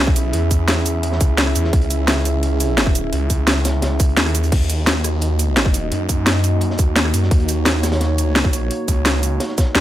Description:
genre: dark technical drum and bass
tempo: 172 BPM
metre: 4/4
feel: straight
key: Eb phrygian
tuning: A4 = 440 Hz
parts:
  - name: dark analog pad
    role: sustained chords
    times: 0.0-9.8 s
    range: Bb3 to Fb5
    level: -24 LUFS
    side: right 1 dB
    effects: chorus, sidechain pumping
  - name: snarling distorted saw bass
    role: bass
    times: 0.0-9.8 s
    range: Db2 to Gb2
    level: -19 LUFS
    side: equal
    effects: overdrive
  - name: crunchy breakbeat drum kit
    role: drums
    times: 0.1-9.8 s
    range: hi-hat, snare drum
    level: -28 LUFS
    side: equal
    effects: high-pass filter on hats, high-pass filter on snare, high-pass filter on room
  - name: electronic kick drum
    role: drums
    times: 0.1-9.6 s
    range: none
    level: -17 LUFS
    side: equal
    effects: none
  - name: drum and bass drum kit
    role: drums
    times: 0.2-9.8 s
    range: cabasa, crash cymbal, hi-hat, rim click, snare drum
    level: -18 LUFS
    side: equal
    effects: overdrive
room: little or no reverb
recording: none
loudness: -15 LUFS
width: side -13 dB against mid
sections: 0.0-9.8 A section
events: none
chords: 0.0 Dbm; 4.5 Ebm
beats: | 0.34 0.68 1.03 1.38 | 1.73 2.08 2.43 2.78 | 3.13 3.48 3.82 4.17 | 4.52 4.87 5.22 5.57 | 5.92 6.26 6.61 6.96 | 7.31 7.66 8.01 8.36 | 8.71 9.06 9.40 9.75

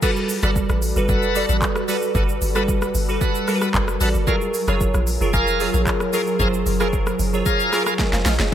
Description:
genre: amapiano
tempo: 113 BPM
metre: 4/4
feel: straight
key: unclear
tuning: A4 = 440 Hz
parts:
  - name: glassy digital keys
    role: accompaniment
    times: 0.0-8.5 s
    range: F#3 to G#5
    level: -23 LUFS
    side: right 2 dB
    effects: chorus
  - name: ethereal airy pad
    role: sustained chords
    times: 0.0-8.5 s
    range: F#3 to B4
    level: -29 LUFS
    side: left 1 dB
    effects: ensemble chorus, built-in reverb
  - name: bright tonewheel organ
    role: stabs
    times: 0.0-8.5 s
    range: G#4 to F#5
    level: -25 LUFS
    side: left 1 dB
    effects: overdrive, slow rotary speaker, digital delay
  - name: afro-pop drum kit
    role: drums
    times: 0.0-8.5 s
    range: crash cymbal, handclaps, hi-hat, kick drum, rim click, shaker, snare drum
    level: -24 LUFS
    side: equal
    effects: none
  - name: deep log drum bass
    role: bass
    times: 0.4-8.5 s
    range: E#1 to A#1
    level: -22 LUFS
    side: equal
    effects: none
room: little or no reverb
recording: none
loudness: -18 LUFS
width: side -10 dB against mid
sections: 0.0-8.5 A section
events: drop 0.0-8.5; drum fill 8.0-8.5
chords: 0.0 Gmaj9; 4.3 F#maj9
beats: | 0.03 0.56 1.09 1.62 | 2.15 2.68 3.21 3.74 | 4.27 4.80 5.34 5.87 | 6.40 6.93 7.46 7.99 | 8.52

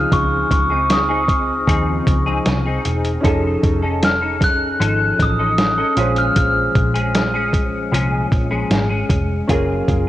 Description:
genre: indie pop, bedroom pop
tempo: 77 BPM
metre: 4/4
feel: straight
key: Db major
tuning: A4 = 440 Hz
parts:
  - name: glockenspiel with rubber mallets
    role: melody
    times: 0.0-8.7 s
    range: Db6 to Gb6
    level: -20 LUFS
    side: left 1 dB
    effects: lush chorus, cassette tape, analog delay
  - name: semi-hollow electric guitar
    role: accompaniment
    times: 0.0-10.1 s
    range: Bb2 to A4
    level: -22 LUFS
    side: left 2 dB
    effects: ensemble chorus, vibrato effect
  - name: warm upright piano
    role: accompaniment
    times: 0.0-10.1 s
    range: C4 to C5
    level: -26 LUFS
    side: right 2 dB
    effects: none
  - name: vintage muted picked electric bass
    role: bass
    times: 0.0-10.1 s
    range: Fb1 to Eb2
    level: -21 LUFS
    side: equal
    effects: none
  - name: lo-fi sampler-style drum kit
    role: drums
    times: 0.1-10.1 s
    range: hi-hat, kick drum, snare drum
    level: -20 LUFS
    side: equal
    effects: overdrive
room: light reverb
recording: home recording on cassette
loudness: -15 LUFS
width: side -14 dB against mid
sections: 0.0-10.1 A section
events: none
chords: 0.0 Dbmaj9; 3.2 F7alt; 6.0 Bbm7; 9.5 Gbmaj9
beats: | 0.12 0.90 1.68 2.46 | 3.24 4.02 4.80 5.58 | 6.37 7.15 7.93 8.71 | 9.49

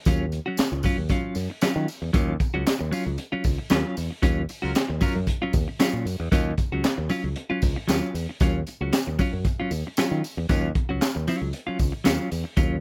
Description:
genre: funk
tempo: 115 BPM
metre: 4/4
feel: straight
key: Eb minor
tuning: A4 = 440 Hz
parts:
  - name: semi-hollow electric guitar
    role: accompaniment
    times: 0.1-12.8 s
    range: Gb3 to Gb4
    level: -29 LUFS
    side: equal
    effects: tremolo
  - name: fingered electric bass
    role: bass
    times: 0.1-12.8 s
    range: Db2 to Eb3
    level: -30 LUFS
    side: equal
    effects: none
  - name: crunchy breakbeat drum kit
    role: drums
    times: 0.1-12.7 s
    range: handclaps, hi-hat, kick drum, snare drum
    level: -27 LUFS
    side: equal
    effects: none
  - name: tambourine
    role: percussion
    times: 0.1-12.7 s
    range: none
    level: -42 LUFS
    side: equal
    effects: none
  - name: warm horn section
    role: second line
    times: 4.6-5.2 s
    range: Gb3 to Bb4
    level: -41 LUFS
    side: equal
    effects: tape echo
room: little or no reverb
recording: rough home demo mix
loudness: -25 LUFS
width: mono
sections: 0.0-12.8 A section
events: band accent 4.2-6.3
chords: 0.0 Ebm9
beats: | 0.07 0.59 1.11 1.63 | 2.15 2.67 3.19 3.71 | 4.23 4.75 5.28 5.80 | 6.32 6.84 7.37 7.89 | 8.41 8.93 9.45 9.97 | 10.50 11.02 11.54 12.06 | 12.58

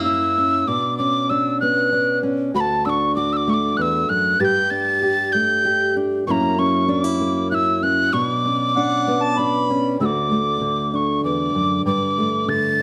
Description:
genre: acoustic folk duo or small band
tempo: 97 BPM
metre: 3/4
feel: straight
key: D major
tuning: A4 = 437 Hz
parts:
  - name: breathy mellow tin whistle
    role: melody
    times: 0.0-12.8 s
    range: A5 to A6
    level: -22 LUFS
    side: equal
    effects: none
  - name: fingerpicked steel-string acoustic guitar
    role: accompaniment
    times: 0.0-12.8 s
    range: D2 to G4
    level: -23 LUFS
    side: equal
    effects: none
  - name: mellow harmonica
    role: second line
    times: 8.8-10.0 s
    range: F#5 to B5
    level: -25 LUFS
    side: equal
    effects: none
room: moderate large studio reverb, RT60 1.3 s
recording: none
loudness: -20 LUFS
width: mono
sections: 0.0-10.0 A section; 10.0-12.8 B section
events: none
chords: 0.0 F#7; 0.7 Bmadd9; 2.5 Dadd9; 4.4 Gsus2; 6.3 F#7; 8.1 Bmadd9; 10.0 Dadd9; 11.9 Gsus2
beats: 0.05 | 0.67 1.29 1.92 | 2.54 3.16 3.78 | 4.40 5.02 5.64 | 6.27 6.89 7.51 | 8.13 8.75 9.37 | 9.99 10.61 11.23 | 11.85 12.47

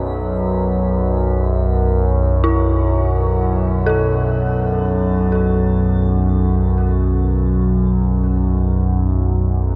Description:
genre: dark ambient drone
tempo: free time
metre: none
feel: none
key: unclear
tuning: A4 = 440 Hz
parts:
  - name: analog drone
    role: drone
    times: 0.0-9.8 s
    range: B1 to F#2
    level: -17 LUFS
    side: equal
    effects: chorus
  - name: bronze singing bowl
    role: texture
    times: 0.0-9.8 s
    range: B4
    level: -40 LUFS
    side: equal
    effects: none
  - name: dark detuned synth bell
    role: arpeggios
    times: 2.4-9.8 s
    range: E4 to A4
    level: -26 LUFS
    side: equal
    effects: chorus, delay, shimmer reverb
room: moderate huge ambient reverb, RT60 8.7 s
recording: none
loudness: -17 LUFS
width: mono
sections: 0.0-9.8 A section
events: none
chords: 0.0 B7sus4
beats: free time

